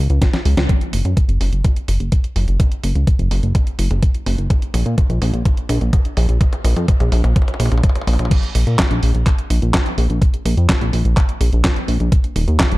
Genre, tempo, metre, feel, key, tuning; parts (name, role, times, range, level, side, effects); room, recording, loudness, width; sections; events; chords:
italo disco; 126 BPM; 4/4; straight; A4 = 441 Hz
chorused synth bass; bass; 0.0-12.8 s; Eb1 to Bb2; -16 LUFS; equal
clean 12-bit digital drum machine; drums; 0.1-12.8 s; crash cymbal, handclaps, hi-hat, snare drum, toms; -23 LUFS; equal; high-pass filter on hats, high-pass filter on snare, high-pass filter on toms, high-pass filter on cymbals, high-pass filter on room
electronic kick drum; drums; 0.2-12.7 s; -15 LUFS; equal
little or no reverb; dark, warm production; -14 LUFS; side -19 dB against mid
0.7-8.3 A section; 8.3-12.8 B section
drum fill 0.2-0.7, 0.7-8.3; band accent 0.6